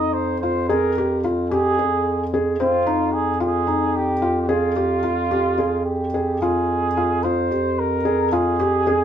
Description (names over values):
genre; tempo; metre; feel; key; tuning
contemporary instrumental, chamber music in an uneven meter; 221 BPM (eighths); 7/8; straight; F minor; A4 = 440 Hz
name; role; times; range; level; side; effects
warm flugelhorn; melody; 0.0-9.0 s; F4 to Eb5; -23 LUFS; right 2 dB; none
felt-muted upright piano; arpeggios; 0.0-9.0 s; C4 to Ab4; -22 LUFS; left 1 dB; none
mellow bass clarinet; bass; 0.0-9.0 s; F2; -24 LUFS; right 1 dB; none
room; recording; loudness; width
light reverb; none; -18 LUFS; side -9 dB against mid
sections
0.0-6.4 A section; 6.4-9.0 B section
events
none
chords
0.0 Fm9; 6.4 Fm